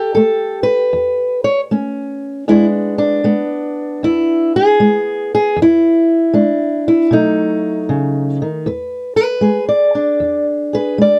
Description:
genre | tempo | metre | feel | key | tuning
acoustic country blues, solo or duo | 78 BPM | 4/4 | swing 67% on 8ths | E mixolydian | A4 = 441 Hz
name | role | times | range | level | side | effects
fingerpicked old ladder-braced acoustic guitar | solo | 0.0-11.2 s | E2 to D5 | -15 LUFS | equal | none
room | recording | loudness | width
light reverb | dry, close 1970s-style studio recording | -15 LUFS | mono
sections
0.0-8.7 A section; 8.7-11.2 B section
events
steel-string acoustic guitar solo 8.7-11.2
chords
0.0 A7; 2.5 E7; 7.1 B7; 8.7 E7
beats
0.16 0.93 1.70 | 2.48 3.25 4.02 4.79 | 5.57 6.34 7.11 7.88 | 8.65 9.43 10.20 10.97

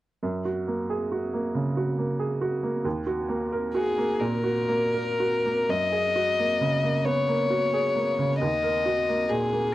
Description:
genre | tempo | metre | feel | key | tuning
neoclassical piano and strings | 38-47 BPM (dotted quarters) | 6/8 | rubato | F# major | A4 = 441 Hz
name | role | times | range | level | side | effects
bright upright piano | accompaniment | 0.2-9.7 s | D#2 to A#4 | -26 LUFS | right 2 dB | none
warm violin | melody | 3.7-9.7 s | G#4 to D#5 | -24 LUFS | left 3 dB | none
room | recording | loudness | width
little or no reverb | dry, close 1970s-style studio recording | -23 LUFS | side -15 dB against mid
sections
0.2-5.7 A section; 5.7-9.7 B section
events
none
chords
0.2 F#add9; 2.9 D#m; 5.7 F#add9; 8.4 D#m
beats
| 0.23 1.56 | 2.85 4.20 | 5.69 7.06 | 8.40 9.74

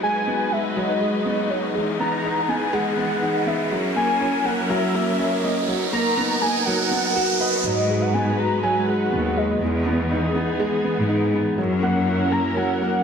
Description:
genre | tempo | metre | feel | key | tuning
piano and strings electronica | 122 BPM | 4/4 | straight | G# minor | A4 = 440 Hz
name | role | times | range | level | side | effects
warm velvety synth lead | melody | 0.0-13.0 s | C#5 to A#5 | -25 LUFS | equal | chorus, tape echo
dark studio string section | sustained chords | 0.0-13.0 s | E3 to B4 | -26 LUFS | left 2 dB | none
warm concert grand piano | riff | 0.0-13.0 s | F#3 to B4 | -24 LUFS | right 1 dB | none
rich studio cello section | bass | 0.0-12.5 s | C#2 to B2 | -27 LUFS | left 1 dB | high-pass filter
riser | sound effects | 0.0-7.6 s | none | -28 LUFS | right 2 dB | none
room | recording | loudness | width
wet echo chamber reverb, RT60 1.6 s, studio reverb | none | -19 LUFS | side -6 dB against mid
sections
0.0-7.7 A section; 7.7-13.0 B section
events
build-up 0.0-7.7; riser 0.0-7.7; drop 7.7-13.0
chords
0.0 G#m7; 1.7 Emaj7; 3.7 F#7; 5.7 Bmaj7; 7.7 G#m7; 9.6 Emaj7; 11.6 F#7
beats
0.27 0.76 1.26 | 1.75 2.24 2.73 3.22 | 3.71 4.21 4.70 5.19 | 5.68 6.17 6.67 7.16 | 7.65 8.14 8.63 9.12 | 9.62 10.11 10.60 11.09 | 11.58 12.08 12.57

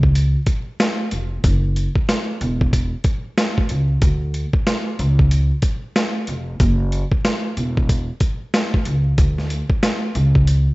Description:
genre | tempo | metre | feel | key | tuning
hip hop, boom-bap hip-hop | 93 BPM | 4/4 | swing 62% on 16ths | unclear | A4 = 440 Hz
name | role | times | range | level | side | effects
upright bass | bass | 0.0-10.7 s | E1 to D2 | -18 LUFS | equal | none
boom bap sampler-style drum kit | drums | 0.0-10.7 s | hi-hat, kick drum, snare drum | -19 LUFS | equal | none
room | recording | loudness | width
light reverb | rough home demo mix, vinyl crackle, nothing above 7.9 kHz | -17 LUFS | side -21 dB against mid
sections
0.0-10.7 A section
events
none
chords
none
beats
0.15 0.80 | 1.44 2.09 2.73 3.38 | 4.02 4.67 5.31 5.96 | 6.60 7.25 7.89 8.54 | 9.18 9.83 10.47

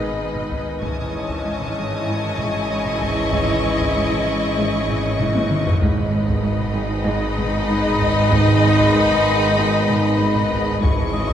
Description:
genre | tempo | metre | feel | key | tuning
cinematic, suspense film score | 96 BPM | 4/4 | straight | G# minor | A4 = 441 Hz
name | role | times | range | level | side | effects
rich symphonic violin section | melody | 0.0-11.3 s | B5 to C#6 | -29 LUFS | left 4 dB | none
rich studio violin section | second line | 0.0-11.3 s | D#5 | -26 LUFS | left 2 dB | none
clear symphonic viola section | accompaniment | 0.0-11.3 s | D#4 to E4 | -26 LUFS | equal | none
bubbling stepped-filter texture | sustained chords | 0.0-11.3 s | E4 to D#5 | -30 LUFS | left 2 dB | chorus, built-in reverb
mellow French horn section | sustained chords | 0.0-11.3 s | B3 to D#5 | -26 LUFS | left 3 dB | none
warm trombone section | sustained chords | 0.0-11.3 s | D#3 to G#3 | -27 LUFS | right 1 dB | none
clear symphonic cello section | riff | 0.0-11.3 s | G#2 to G#3 | -27 LUFS | equal | none
rich symphonic cello section | bass | 0.0-11.3 s | G#2 | -26 LUFS | right 3 dB | none
rich symphonic double bass section | bass | 0.0-11.3 s | G#1 | -26 LUFS | right 3 dB | none
overtone-sweeping drone | drone | 0.0-11.3 s | G#1 | -31 LUFS | equal | chorus, built-in reverb, phaser
rich symphonic violin section | texture | 0.0-5.5, 10.8-11.3 s | G#5 to D#6 | -32 LUFS | left 4 dB | none
vibraphone with soft mallets | texture | 0.0-11.3 s | B4 to D#6 | -32 LUFS | left 5 dB | none
taiko ensemble | drums | 0.4-11.3 s | none | -25 LUFS | left 1 dB | none
room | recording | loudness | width
wet scoring stage reverb, RT60 1.7 s | none | -17 LUFS | side -9 dB against mid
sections
0.0-11.3 A section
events
drum fill 5.2-5.8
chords
0.0 G#m; 0.8 C#madd9/G#; 5.8 G#m; 10.8 C#madd9/G#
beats
0.20 | 0.82 1.45 2.08 2.70 | 3.33 3.95 4.58 5.20 | 5.83 6.45 7.08 7.70 | 8.32 8.95 9.57 10.20 | 10.82

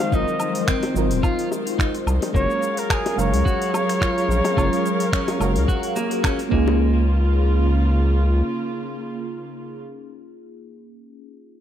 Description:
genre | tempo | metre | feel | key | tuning
sunset chillout | 108 BPM | 4/4 | swing 54% on 16ths | Db major | A4 = 439 Hz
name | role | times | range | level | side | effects
warm flugelhorn | melody | 0.0-6.2 s | Ab4 to F5 | -26 LUFS | equal | digital delay
mellow FM electric piano | accompaniment | 0.0-11.5 s | F3 to F5 | -27 LUFS | moving between left 6 dB and right 2 dB | chorus, phaser, auto-pan, ping-pong delay
dark studio string section | sustained chords | 0.0-9.8 s | Db3 to F5 | -27 LUFS | equal | none
smooth R&B drum kit | drums | 0.0-6.5 s | finger snaps, hi-hat, shaker, woodblock | -29 LUFS | equal | none
bongos | percussion | 0.0-6.8 s | none | -30 LUFS | left 4 dB | none
clean electric guitar | arpeggios | 0.1-7.0 s | Bb3 to Bb4 | -29 LUFS | right 2 dB | ping-pong delay
round analog bass | bass | 0.1-8.4 s | Eb1 to Db2 | -19 LUFS | equal | none
electronic kick drum | drums | 0.1-6.6 s | none | -22 LUFS | equal | none
room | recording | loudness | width
light reverb | none | -18 LUFS | side -10 dB against mid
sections
0.0-6.8 A section; 6.8-9.0 B section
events
none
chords
0.0 Ab13; 2.4 Gbmaj9; 6.5 Db6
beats
| 0.13 0.69 1.24 1.80 | 2.35 2.91 3.46 4.02 | 4.57 5.13 5.68 6.24 | 6.80 7.35 7.91 8.46

